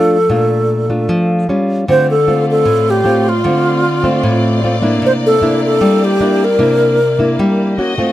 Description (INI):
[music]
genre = bossa nova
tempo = 152 BPM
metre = 4/4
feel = straight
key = unclear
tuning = A4 = 442 Hz
[part]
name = alto flute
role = melody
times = 0.0-7.6 s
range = F4 to C5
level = -13 LUFS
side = equal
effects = none
[part]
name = nylon-string guitar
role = accompaniment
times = 0.0-8.1 s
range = A2 to Gb4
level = -14 LUFS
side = equal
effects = none
[part]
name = warm symphonic string section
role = sustained chords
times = 1.9-8.1 s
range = Bb3 to Eb5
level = -23 LUFS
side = left 1 dB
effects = none
[sound]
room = light reverb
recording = close, detailed microphones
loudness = -11 LUFS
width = side -14 dB against mid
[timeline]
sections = 0.0-8.1 A section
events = none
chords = 0.0 Bbmaj7; 1.5 C#; 1.9 Dm7; 5.0 C9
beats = | 0.30 0.69 1.09 1.48 | 1.87 2.27 2.66 3.05 | 3.45 3.84 4.23 4.63 | 5.02 5.41 5.81 6.20 | 6.59 6.99 7.38 7.78